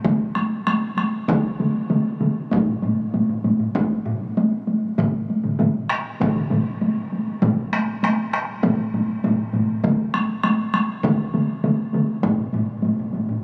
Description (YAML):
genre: japanese traditional, taiko drum ensemble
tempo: 98 BPM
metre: 4/4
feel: straight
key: none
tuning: none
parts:
  - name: solo taiko drums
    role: percussion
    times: 0.0-12.1 s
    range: none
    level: -29 LUFS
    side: equal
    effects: none
  - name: taiko ensemble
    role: percussion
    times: 0.0-12.4 s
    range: none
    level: -32 LUFS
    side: equal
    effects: none
  - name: solo taiko drums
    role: percussion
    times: 0.1-13.3 s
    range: none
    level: -24 LUFS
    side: equal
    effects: none
  - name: taiko ensemble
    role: percussion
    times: 2.5-13.4 s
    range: none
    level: -30 LUFS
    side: equal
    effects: none
room: wet huge ambient reverb, RT60 8.5 s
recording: recorded on a phone in the room, club reverb, compression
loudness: -22 LUFS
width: mono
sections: 0.0-13.4 A section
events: speeding up 0.0-13.4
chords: none